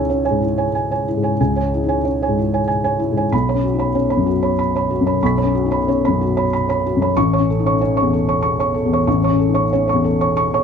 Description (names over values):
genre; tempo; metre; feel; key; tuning
neoclassical minimalist piano; 93 BPM; 3/4; rubato; C# minor; A4 = 441 Hz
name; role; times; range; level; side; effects
felt-muted upright piano; solo; 0.0-10.6 s; A1 to B6; -15 LUFS; equal; none
room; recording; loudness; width
light reverb; close, detailed microphones; -15 LUFS; side -7 dB against mid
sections
0.0-10.6 A section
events
none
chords
0.0 C#m; 3.3 Bsus2; 7.2 A